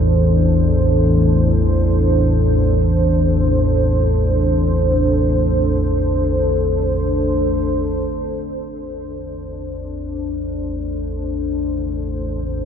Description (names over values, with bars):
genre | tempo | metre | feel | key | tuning
ambient | free time | none | none | A minor | A4 = 440 Hz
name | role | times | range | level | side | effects
deep dark ambient pad | sustained chords | 0.0-12.7 s | D4 to C5 | -20 LUFS | equal | chorus, built-in reverb
deep rumbling drone | drone | 0.0-12.7 s | A1 to E2 | -18 LUFS | equal | built-in reverb
old church bells | arpeggios | 11.8-12.7 s | A2 | -38 LUFS | left 3 dB | none
room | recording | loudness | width
moderate huge ambient reverb, RT60 8.3 s | none | -15 LUFS | side -8 dB against mid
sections
0.0-8.1 A section; 8.1-12.7 B section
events
none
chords
0.0 Am